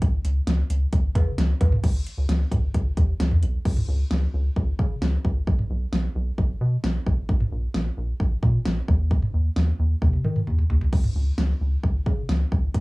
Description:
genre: synth-pop.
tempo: 132 BPM.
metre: 4/4.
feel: straight.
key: unclear.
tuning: A4 = 445 Hz.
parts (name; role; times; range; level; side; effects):
rubbery square bass; bass; 0.0-12.8 s; A#1 to D#3; -23 LUFS; equal; none.
pop drum kit; drums; 0.0-12.8 s; cowbell, crash cymbal, hi-hat, kick drum, snare drum, toms; -23 LUFS; equal; overdrive, cassette tape.
room: light reverb.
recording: home recording on cassette, small room ambience.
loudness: -21 LUFS.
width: side -23 dB against mid.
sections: 0.0-1.8 A section; 1.8-3.7 B section; 3.7-12.8 C section.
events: drum fill 10.0-10.9.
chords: none.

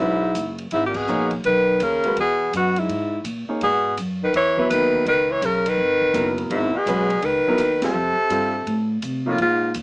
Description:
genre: modal jazz.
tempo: 166 BPM.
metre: 4/4.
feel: swing 65% on 8ths.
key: C# dorian.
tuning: A4 = 438 Hz.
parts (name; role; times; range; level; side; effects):
breathy alto saxophone; melody; 0.0-9.7 s; E4 to C#5; -20 LUFS; equal; none.
breathy tenor saxophone; second line; 0.0-9.7 s; Ab2 to E3; -25 LUFS; left 1 dB; none.
warm baby grand piano; accompaniment; 0.0-9.4 s; F3 to E5; -24 LUFS; equal; none.
upright bass; bass; 0.0-9.8 s; F#1 to C3; -28 LUFS; equal; none.
open jazz drum kit; drums; 0.3-9.8 s; crash cymbal, hi-hat, kick drum, ride cymbal, snare drum; -37 LUFS; equal; none.
room: light reverb.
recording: small speaker sound.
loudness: -18 LUFS.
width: side -26 dB against mid.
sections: 0.0-9.4 A section.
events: band accent 0.9, 7.8.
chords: 0.0 C#m9; 7.9 F.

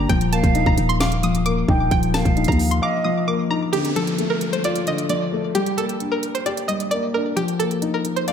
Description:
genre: hip hop, trap.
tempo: 132 BPM.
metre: 4/4.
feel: half-time.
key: unclear.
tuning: A4 = 440 Hz.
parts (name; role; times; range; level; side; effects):
string-like resonator pluck; melody; 0.0-8.3 s; G4 to Eb6; -24 LUFS; right 1 dB; chorus, low-pass filter, ping-pong delay.
silver concert flute; second line; 0.0-3.2 s; Eb5 to G5; -27 LUFS; right 5 dB; ping-pong delay.
dark baby grand piano; accompaniment; 0.0-8.3 s; D3 to F5; -22 LUFS; left 4 dB; low-pass filter.
growling 808-style bass; bass; 0.0-2.8 s; Eb1 to Eb2; -22 LUFS; right 1 dB; none.
trap drum kit; drums; 0.1-8.3 s; hi-hat, kick drum, snare drum; -23 LUFS; right 1 dB; none.
downlifter; sound effects; 3.7-7.4 s; none; -31 LUFS; right 2 dB; none.
room: moderate plate reverb, RT60 1.7 s, digital ambience.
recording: dreamy mix soaked in reverb.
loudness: -18 LUFS.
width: side -8 dB against mid.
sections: 0.0-3.7 A section; 3.7-8.3 B section.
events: break 2.8-3.7.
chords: 0.1 Ebsus2; 3.7 Dm; 5.5 Gm; 7.4 Ebsus2.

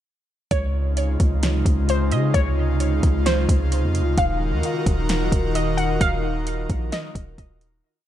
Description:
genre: hip hop, atmospheric cloud-rap.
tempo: 131 BPM.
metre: 4/4.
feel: half-time.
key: Db major.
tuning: A4 = 439 Hz.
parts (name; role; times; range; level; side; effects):
warbly dusty pluck; melody; 0.5-7.4 s; C5 to Gb5; -28 LUFS; equal; chorus, phaser, low-pass filter, digital delay.
airy breathy pad; sustained chords; 0.5-7.8 s; C3 to Bb4; -25 LUFS; equal; chorus, sidechain pumping.
long sustained 808-style bass; bass; 0.5-7.8 s; Eb1 to Db3; -22 LUFS; equal; none.
smooth R&B drum kit; drums; 0.5-7.7 s; hi-hat, kick drum, snare drum; -23 LUFS; equal; none.
room: light reverb.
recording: none.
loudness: -19 LUFS.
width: side -11 dB against mid.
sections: 0.5-7.8 verse.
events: fade-out 6.0-7.8.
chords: 0.5 Dbmaj7; 4.2 Ebmadd9.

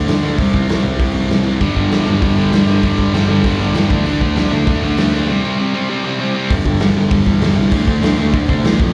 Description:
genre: punk rock.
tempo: 196 BPM.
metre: 4/4.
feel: straight.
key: unclear.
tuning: A4 = 443 Hz.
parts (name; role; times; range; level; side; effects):
sludgy distorted guitar; riff; 0.0-8.9 s; F2 to D4; -19 LUFS; equal; overdrive, slapback echo.
dark grand piano; bass; 0.0-8.9 s; F1 to C3; -22 LUFS; equal; none.
raw garage drum kit; drums; 0.1-8.9 s; hi-hat, kick drum, snare drum; -20 LUFS; equal; none.
distorted electric guitar; riff; 1.6-6.5 s; G2 to D4; -23 LUFS; equal; overdrive, slapback echo.
room: light reverb.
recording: live gig heard through the venue's PA, club reverb.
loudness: -15 LUFS.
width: mono.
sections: 0.0-6.5 A section; 6.5-8.9 B section.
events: break 5.3-6.5.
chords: 0.4 C5; 1.6 G5; 3.9 D5; 5.3 C5; 6.5 G5; 7.7 D5.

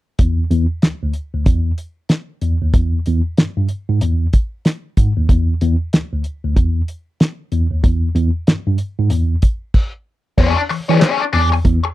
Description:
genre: funk.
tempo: 94 BPM.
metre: 4/4.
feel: swing 60% on 16ths.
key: E mixolydian.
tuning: A4 = 440 Hz.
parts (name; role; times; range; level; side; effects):
mellow tine electric piano; bass; 0.2-11.8 s; D2 to E3; -16 LUFS; equal; medium stereo tremolo.
cloth-damped thuddy drum kit; drums; 0.2-11.8 s; crash cymbal, handclaps, hi-hat, kick drum, snare drum; -14 LUFS; equal; none.
biting overdriven guitar; accompaniment; 10.4-11.9 s; D4 to D5; -16 LUFS; left 5 dB; wah.
room: little or no reverb.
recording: dry, close 1970s-style studio recording.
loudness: -15 LUFS.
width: side -16 dB against mid.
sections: 0.2-10.4 A section; 10.4-11.9 B section.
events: stop 9.7-10.4.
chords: 0.2 N.C.; 10.4 E6.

